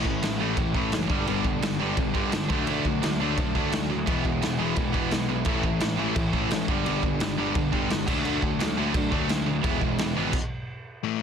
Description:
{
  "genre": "punk rock",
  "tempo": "172 BPM",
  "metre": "4/4",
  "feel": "straight",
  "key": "unclear",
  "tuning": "A4 = 442 Hz",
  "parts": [
    { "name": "fuzz guitar", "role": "riff", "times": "0.0-10.3 s", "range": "G2 to E4", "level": "-32 LUFS", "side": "equal", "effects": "distortion" },
    { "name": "sludgy distorted guitar", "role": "riff", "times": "0.0-11.2 s", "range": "E2 to D4", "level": "-30 LUFS", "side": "left 11 dB", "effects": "overdrive" },
    { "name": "tight distorted guitar", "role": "riff", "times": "0.0-10.3 s", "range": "G2 to B3", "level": "-30 LUFS", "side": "right 14 dB", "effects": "distortion" },
    { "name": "fuzz picked electric bass", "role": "bass", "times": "0.0-10.3 s", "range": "E1 to D2", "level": "-32 LUFS", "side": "equal", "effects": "overdrive" },
    { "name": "raw garage drum kit", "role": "drums", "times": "0.1-10.4 s", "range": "crash cymbal, kick drum, snare drum", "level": "-28 LUFS", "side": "equal", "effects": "none" }
  ],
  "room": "light reverb",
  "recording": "dense, heavily limited modern master",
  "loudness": "-23 LUFS",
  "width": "side -7 dB against mid",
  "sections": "0.0-11.0 A section",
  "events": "stop 10.3-11.0",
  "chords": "0.0 A; 1.1 G; 2.5 D; 4.1 E; 5.5 A; 6.7 G; 8.1 D; 9.6 E",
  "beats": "0.23 0.58 0.93 | 1.28 1.63 1.98 2.33 | 2.68 3.03 3.38 3.73 | 4.08 4.42 4.77 5.12 | 5.47 5.82 6.16 6.51 | 6.86 7.21 7.56 7.90 | 8.25 8.60 8.95 9.30 | 9.64 9.99 10.34 10.69 | 11.04"
}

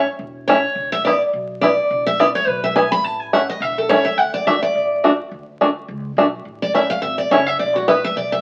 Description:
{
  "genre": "bluegrass",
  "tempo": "211 BPM",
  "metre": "4/4",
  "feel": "swing 56% on 8ths",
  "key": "A major",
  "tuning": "A4 = 440 Hz",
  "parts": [
    { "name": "picked steel-string acoustic guitar", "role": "accompaniment", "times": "0.0-8.4 s", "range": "F#4 to B5", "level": "-20 LUFS", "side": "equal", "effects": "none" },
    { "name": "upright bass", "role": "bass", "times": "0.0-8.4 s", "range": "E1 to D2", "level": "-38 LUFS", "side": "equal", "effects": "none" },
    { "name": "bluegrass banjo", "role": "melody", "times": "0.5-7.9 s", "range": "A3 to F#4", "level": "-18 LUFS", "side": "equal", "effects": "none" }
  ],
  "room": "moderate studio reverb, RT60 0.8 s",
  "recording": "very old 78 rpm record, vinyl crackle",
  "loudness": "-18 LUFS",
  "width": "mono",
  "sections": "0.0-4.2 A section; 4.2-8.4 A section",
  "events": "steel-string acoustic guitar solo 0.0-8.4",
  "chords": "0.0 A (rootless); 0.8 E5; 3.0 A; 4.2 D5; 6.5 A; 7.6 E5",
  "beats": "0.20 0.49 | 0.77 1.06 1.34 1.62 | 1.91 2.19 2.48 2.76 | 3.04 3.33 3.61 3.90 | 4.18 4.47 4.75 5.04 | 5.32 5.60 5.89 6.17 | 6.46 6.74 7.03 7.31 | 7.59 7.88 8.16"
}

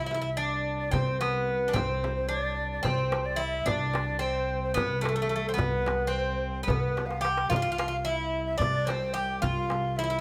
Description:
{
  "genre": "Turkish makam ensemble",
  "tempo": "219 BPM (eighths)",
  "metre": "7/8",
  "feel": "straight",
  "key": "C makam rast",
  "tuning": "A4 = 440 Hz",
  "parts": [
    { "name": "Greek bouzouki", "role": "melody", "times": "0.0-10.2 s", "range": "A3 to G4", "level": "-33 LUFS", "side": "equal", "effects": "none" },
    { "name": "breathy ney", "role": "second line", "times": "0.0-10.2 s", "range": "A4 to G5", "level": "-34 LUFS", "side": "equal", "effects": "slapback echo" },
    { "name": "upright bass", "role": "bass", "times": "0.0-10.2 s", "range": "C2 to C3", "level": "-36 LUFS", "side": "equal", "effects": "none" },
    { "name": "warm double bass", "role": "drone", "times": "0.0-10.2 s", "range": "C2", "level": "-42 LUFS", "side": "equal", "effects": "none" },
    { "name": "frame drum", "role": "percussion", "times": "0.1-9.8 s", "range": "none", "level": "-38 LUFS", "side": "equal", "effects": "none" },
    { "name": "darbuka", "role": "percussion", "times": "0.9-9.8 s", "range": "none", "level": "-37 LUFS", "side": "equal", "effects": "none" }
  ],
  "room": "moderate large studio reverb, RT60 1.1 s",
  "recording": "band playing live in one room",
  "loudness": "-29 LUFS",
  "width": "mono",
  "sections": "0.0-10.2 A section",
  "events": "drum fill 7.0-7.5",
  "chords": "none",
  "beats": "0.11 0.39 0.66 0.93 1.21 1.48 | 1.75 2.03 2.30 2.58 2.85 3.12 3.40 | 3.67 3.95 4.22 4.50 4.77 5.04 5.32 | 5.59 5.87 6.14 6.41 6.69 6.96 7.24 | 7.51 7.78 8.06 8.33 8.61 8.88 9.15 | 9.43 9.70 9.97"
}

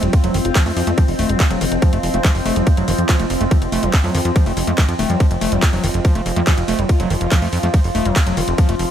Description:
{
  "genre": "psychedelic trance",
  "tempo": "142 BPM",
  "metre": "4/4",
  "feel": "straight",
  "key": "unclear",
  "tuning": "A4 = 438 Hz",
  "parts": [
    { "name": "overtone-sweeping drone", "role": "sustained chords", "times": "0.0-8.9 s", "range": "F3 to F4", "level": "-24 LUFS", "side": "equal", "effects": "chorus, built-in reverb, sidechain pumping" },
    { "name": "overdriven acid bass", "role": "riff", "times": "0.0-8.8 s", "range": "Eb3 to A3", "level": "-24 LUFS", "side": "moving between left 7 dB and right 7 dB", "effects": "auto-pan, sidechain pumping, digital delay" },
    { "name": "plucky analog bass", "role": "bass", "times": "0.0-8.9 s", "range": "Eb1 to F2", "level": "-20 LUFS", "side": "equal", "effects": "none" },
    { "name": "drum and bass drum kit", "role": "drums", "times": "0.0-8.9 s", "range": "handclaps, hi-hat, ride cymbal", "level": "-25 LUFS", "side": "equal", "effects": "overdrive" },
    { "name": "warbly tape-like pad", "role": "texture", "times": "0.0-8.9 s", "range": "C4 to Eb5", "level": "-27 LUFS", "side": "equal", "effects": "chorus, built-in reverb, sidechain pumping" },
    { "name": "formant-sweep wobble bass", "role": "second line", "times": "0.1-7.6 s", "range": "C4 to F4", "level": "-33 LUFS", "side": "left 1 dB", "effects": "none" },
    { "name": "electronic kick drum", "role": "drums", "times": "0.1-8.7 s", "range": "none", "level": "-14 LUFS", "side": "equal", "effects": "overdrive" }
  ],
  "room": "little or no reverb",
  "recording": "none",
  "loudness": "-14 LUFS",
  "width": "side -10 dB against mid",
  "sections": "0.0-8.9 A section",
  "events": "none",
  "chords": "0.0 F5",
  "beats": "| 0.13 0.56 0.98 1.40 | 1.82 2.25 2.67 3.09 | 3.51 3.94 4.36 4.78 | 5.20 5.62 6.05 6.47 | 6.89 7.32 7.74 8.16 | 8.58"
}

